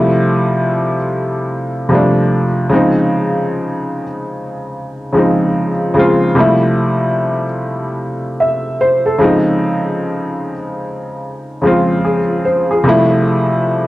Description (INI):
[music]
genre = hip hop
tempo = 74 BPM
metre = 4/4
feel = swing 62% on 16ths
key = unclear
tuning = A4 = 438 Hz
[part]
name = warm upright piano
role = solo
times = 0.0-13.9 s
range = C3 to E5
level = -13 LUFS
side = equal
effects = cassette tape
[sound]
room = wet studio reverb, RT60 0.6 s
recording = dark, warm production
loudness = -12 LUFS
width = side -17 dB against mid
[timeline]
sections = 0.0-13.9 A section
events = none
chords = 0.0 Fmaj9; 2.7 Dbmaj9; 6.4 Fmaj9; 9.2 Dbmaj9; 12.8 Fmaj9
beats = 0.68 1.49 2.31 | 3.12 3.93 4.74 5.55 | 6.36 7.17 7.98 8.79 | 9.60 10.41 11.22 12.03 | 12.85 13.66